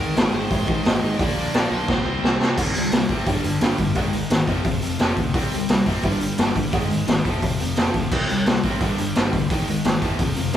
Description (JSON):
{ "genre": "punk rock", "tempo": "173 BPM", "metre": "4/4", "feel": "straight", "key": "unclear", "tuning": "A4 = 443 Hz", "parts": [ { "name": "biting overdriven guitar", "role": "melody", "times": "0.0-2.4 s", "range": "Bb4 to Eb5", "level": "-30 LUFS", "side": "right 1 dB", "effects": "none" }, { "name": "biting overdriven guitar", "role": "riff", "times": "0.0-10.6 s", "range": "F2 to C4", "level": "-32 LUFS", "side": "equal", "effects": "none" }, { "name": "cranked stack guitar", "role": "riff", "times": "0.0-10.6 s", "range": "F2 to C4", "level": "-28 LUFS", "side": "right 6 dB", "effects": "overdrive" }, { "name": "distorted electric guitar", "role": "riff", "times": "0.0-10.6 s", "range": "F2 to C4", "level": "-26 LUFS", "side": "left 7 dB", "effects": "distortion" }, { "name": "fuzz picked electric bass", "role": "bass", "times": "0.0-10.6 s", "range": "F1 to C3", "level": "-30 LUFS", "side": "equal", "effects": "overdrive" }, { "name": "raw garage drum kit", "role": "drums", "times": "0.2-10.6 s", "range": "crash cymbal, hi-hat, kick drum, snare drum", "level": "-21 LUFS", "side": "equal", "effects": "none" } ], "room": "light reverb", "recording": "band playing live in one room", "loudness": "-19 LUFS", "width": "side -10 dB against mid", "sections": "0.0-2.6 A section; 2.6-10.6 B section", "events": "drum fill 1.9-2.6", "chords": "0.0 Ab; 1.2 Bb; 1.9 C5; 3.3 G5; 4.0 Ab5; 4.5 F5; 5.3 C5; 6.0 G5; 6.7 Ab5; 7.2 F5; 8.1 C5; 8.8 G5; 9.5 Ab5; 10.0 F5" }